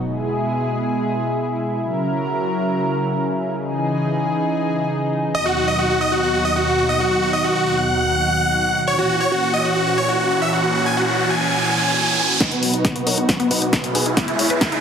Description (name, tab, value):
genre	uplifting trance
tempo	136 BPM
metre	4/4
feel	straight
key	B major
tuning	A4 = 441 Hz
part	lush unison pad	sustained chords	0.0-14.8 s	D#2 to A#4	-21 LUFS	equal	chorus, sidechain pumping
part	impact and riser	sound effects	0.0-0.1, 9.8-14.8 s	none	-24 LUFS	right 2 dB	none
part	big supersaw lead	melody	5.3-14.8 s	B3 to G#5	-19 LUFS	equal	sidechain pumping, low-pass filter, digital delay
part	wide unison pluck	arpeggios	12.4-14.8 s	F#3 to B4	-26 LUFS	left 3 dB	cassette tape, sidechain pumping, digital delay
part	electronic kick drum	drums	12.4-14.7 s	none	-24 LUFS	equal	overdrive, high-pass filter on kick
part	punchy analog drum machine	drums	12.4-14.8 s	hi-hat, snare drum	-22 LUFS	left 1 dB	sidechain pumping on hats, sidechain pumping on cymbals
room	moderate digital room reverb, RT60 1.2 s, digital ambience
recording	heavily compressed radio sound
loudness	-17 LUFS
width	side -7 dB against mid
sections	0.0-12.4 A section; 12.4-14.8 B section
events	riser 9.8-12.4, 12.4-14.8; build-up 12.4-14.8; drum fill 12.4-14.8; filter sweep on supersaw synth 12.4-14.8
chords	0.1 E; 1.8 F#7; 3.6 C#madd9; 5.3 B/D#; 8.9 F#7; 12.4 B; 14.2 E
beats	| 0.05 0.49 0.94 1.38 | 1.82 2.26 2.70 3.14 | 3.58 4.02 4.46 4.91 | 5.35 5.79 6.23 6.67 | 7.11 7.55 7.99 8.44 | 8.88 9.32 9.76 10.20 | 10.64 11.08 11.52 11.96 | 12.40 12.85 13.29 13.73 | 14.17 14.61